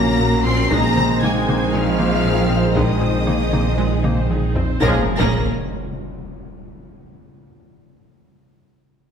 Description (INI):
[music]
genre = cinematic, hybrid orchestral and electronic film score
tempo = 117 BPM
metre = 4/4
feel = straight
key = Bb minor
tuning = A4 = 440 Hz
[part]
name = rich symphonic violin section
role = melody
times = 0.0-5.5 s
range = Eb6 to C7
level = -28 LUFS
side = left 2 dB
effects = none
[part]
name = warm symphonic violin section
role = second line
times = 0.0-5.5 s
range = Bb4 to C6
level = -26 LUFS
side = left 3 dB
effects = none
[part]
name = warm symphonic viola section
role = accompaniment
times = 0.0-5.5 s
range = Bb3 to C5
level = -28 LUFS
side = right 1 dB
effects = none
[part]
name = dark French horn section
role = sustained chords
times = 0.0-5.0 s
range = Ab3 to Db4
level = -27 LUFS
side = left 5 dB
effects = none
[part]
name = mellow trombone section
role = sustained chords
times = 0.0-5.0 s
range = Bb2 to Ab3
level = -27 LUFS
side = right 4 dB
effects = none
[part]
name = warbly tape-like pad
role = sustained chords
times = 0.0-5.1 s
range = Ab3 to C5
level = -28 LUFS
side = equal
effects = none
[part]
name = analog pluck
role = arpeggios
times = 0.0-4.7 s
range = Ab3 to Eb4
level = -30 LUFS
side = right 4 dB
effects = none
[part]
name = rubbery square bass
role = riff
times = 0.0-4.7 s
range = Bb2 to Bb3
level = -25 LUFS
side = left 4 dB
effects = none
[part]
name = rich studio cello section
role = bass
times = 0.0-5.5 s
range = Eb3 to C4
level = -24 LUFS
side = right 3 dB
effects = none
[part]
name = rich symphonic double bass section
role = bass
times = 0.0-5.5 s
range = Bb1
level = -24 LUFS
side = right 4 dB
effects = none
[part]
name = saturated sub bass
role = bass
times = 0.0-5.5 s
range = Bb1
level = -25 LUFS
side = left 1 dB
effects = none
[part]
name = taiko ensemble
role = drums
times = 0.7-6.2 s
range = none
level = -25 LUFS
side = left 1 dB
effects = none
[part]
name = impact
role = sound effects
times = 4.8-6.9 s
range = none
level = -28 LUFS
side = equal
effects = none
[sound]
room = moderate scoring stage reverb, RT60 1.4 s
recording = none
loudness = -16 LUFS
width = side -7 dB against mid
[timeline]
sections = 0.0-4.8 A section; 4.8-6.9 B section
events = drum fill 4.0-4.8; impact 4.8-6.9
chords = 0.0 Gb/Bb; 0.7 Ab/Bb; 4.8 Bbm7